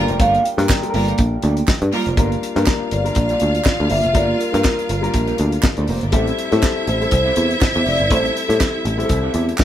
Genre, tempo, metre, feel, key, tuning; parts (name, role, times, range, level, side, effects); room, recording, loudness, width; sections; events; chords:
disco; 121 BPM; 4/4; swing 56% on 16ths; G dorian; A4 = 440 Hz
vibraphone with soft mallets; melody; 0.0-9.3 s; A4 to G5; -22 LUFS; equal
clear studio string section; second line; 0.0-9.6 s; G3 to F5; -24 LUFS; right 1 dB
mellow electric guitar; accompaniment; 0.0-9.6 s; Bb3 to E5; -27 LUFS; right 4 dB; spring reverb
warm baby grand piano; accompaniment; 0.0-9.6 s; G3 to Bb4; -25 LUFS; left 5 dB
picked electric bass; bass; 0.0-9.5 s; F1 to A2; -20 LUFS; equal
damped 70s drum kit; drums; 0.1-9.6 s; hi-hat, kick drum, snare drum; -20 LUFS; equal
group handclap; percussion; 0.7-9.6 s; -26 LUFS; right 3 dB
moderate small room reverb, RT60 0.5 s; band playing live in one room; -15 LUFS; side -11 dB against mid
0.0-2.2 A section; 2.2-9.6 B section
0.0 Gm7; 6.1 Am7